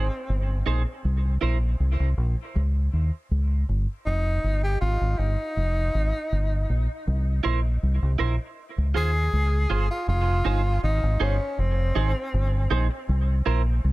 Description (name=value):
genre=dub reggae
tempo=80 BPM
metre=4/4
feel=straight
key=F minor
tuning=A4 = 444 Hz
part: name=breathy tenor saxophone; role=melody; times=0.0-12.7 s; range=C4 to Ab4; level=-30 LUFS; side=left 1 dB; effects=dub echo
part: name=clean electric guitar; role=accompaniment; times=0.0-1.6, 7.4-13.6 s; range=Eb4 to C5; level=-31 LUFS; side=right 7 dB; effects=analog chorus, dub echo
part: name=deep dub fingered electric bass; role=bass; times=0.0-13.9 s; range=F1 to Eb2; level=-22 LUFS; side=equal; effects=none
room=small room ambience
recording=none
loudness=-22 LUFS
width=side -19 dB against mid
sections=0.0-10.1 A section; 10.1-13.9 B section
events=none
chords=0.0 Fm7 (rootless); 1.0 C7(no3); 2.5 N.C.; 4.0 Fm7; 7.1 C7; 8.6 Dbmaj7; 10.1 Fm7; 13.1 C7